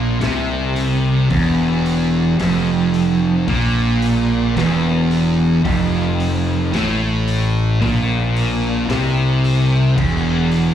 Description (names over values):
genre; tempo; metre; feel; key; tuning
stoner and doom metal; 55 BPM; 4/4; straight; unclear; A4 = 440 Hz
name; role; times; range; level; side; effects
crunchy overdriven guitar; riff; 0.0-10.7 s; E2 to B#2; -22 LUFS; left 1 dB; slapback echo
thick fuzz guitar; riff; 0.0-10.7 s; E2 to B#2; -20 LUFS; left 4 dB; distortion
thick fuzz guitar; riff; 0.0-10.7 s; E2 to B#2; -20 LUFS; right 6 dB; distortion
fuzz fingered electric bass; bass; 0.0-10.7 s; E1 to B#1; -22 LUFS; left 1 dB; overdrive
raw garage drum kit; drums; 0.2-10.7 s; crash cymbal, hi-hat, kick drum, snare drum; -29 LUFS; left 1 dB; none
room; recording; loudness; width
little or no reverb; live gig heard through the venue's PA, club reverb; -15 LUFS; side -10 dB against mid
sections
0.0-10.7 A section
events
none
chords
0.0 A#maj7sus2/E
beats
0.21 | 1.30 2.39 3.48 4.56 | 5.65 6.73 7.82 8.90 | 9.98